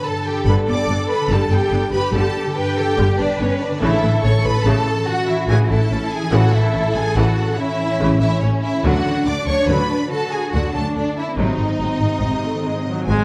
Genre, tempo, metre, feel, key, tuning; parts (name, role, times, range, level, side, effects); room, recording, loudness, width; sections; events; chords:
cinematic; 95 BPM (dotted quarters); 12/8; straight; A4 = 440 Hz
warm symphonic violin section; melody; 0.0-13.2 s; C#5 to D6; -29 LUFS; equal
warm symphonic violin section; second line; 0.0-13.2 s; C#4 to D5; -26 LUFS; equal
concert harp; arpeggios; 0.0-13.2 s; G2 to A5; -28 LUFS; equal
warm symphonic cello section; bass; 0.0-13.2 s; B#3 to B4; -26 LUFS; equal
warm studio viola section; accompaniment; 0.5-13.2 s; B#2 to D4; -27 LUFS; equal
warm symphonic double bass section; bass; 0.5-13.2 s; G1 to D2; -22 LUFS; equal
mellow French horn section; sustained chords; 13.1-13.2 s; G#3; -28 LUFS; equal
clear trumpet; stabs; 13.1-13.2 s; G#3; -22 LUFS; equal
moderate scoring stage reverb, RT60 1.9 s; dark, warm production; -18 LUFS; mono
0.0-13.2 A section
0.0 G; 3.8 A; 8.8 D; 11.4 G#7